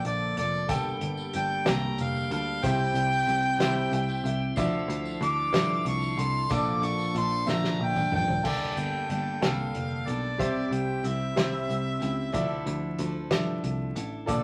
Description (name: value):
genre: folk rock and heartland rock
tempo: 62 BPM (dotted quarters)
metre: 6/8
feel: straight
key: G dorian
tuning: A4 = 441 Hz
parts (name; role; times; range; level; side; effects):
- clear harmonica; second line; 0.0-13.0 s; D5 to D6; -32 LUFS; equal; none
- clear upright piano; accompaniment; 0.0-14.4 s; A3 to G5; -37 LUFS; equal; none
- picked steel-string acoustic guitar; accompaniment; 0.0-14.4 s; G2 to A4; -35 LUFS; equal; none
- picked electric bass; bass; 0.0-14.4 s; F1 to G2; -34 LUFS; equal; none
- unplugged drum kit; drums; 0.0-14.4 s; crash cymbal, hi-hat, kick drum, snare drum, toms; -34 LUFS; equal; none
- tambourine; percussion; 0.1-8.2 s; none; -52 LUFS; equal; none
- tonewheel organ; sustained chords; 0.7-8.4 s; F3 to D5; -40 LUFS; equal; slow rotary speaker
room: moderate studio reverb, RT60 0.7 s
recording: vinyl crackle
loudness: -28 LUFS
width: mono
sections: 0.0-8.4 A section; 8.4-14.4 B section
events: harmonica solo 0.0-8.4; upright piano fill 3.6-4.6; drum fill 7.5-8.4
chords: 0.0 Bbmaj7; 0.7 Gmadd9; 2.6 C; 4.6 Dmadd9; 6.5 Bbmaj7; 8.4 Gmadd9; 10.4 C; 12.3 Dmadd9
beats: | 0.69 1.66 | 2.63 3.60 | 4.57 5.54 | 6.51 7.48 | 8.45 9.42 | 10.39 11.37 | 12.34 13.31 | 14.29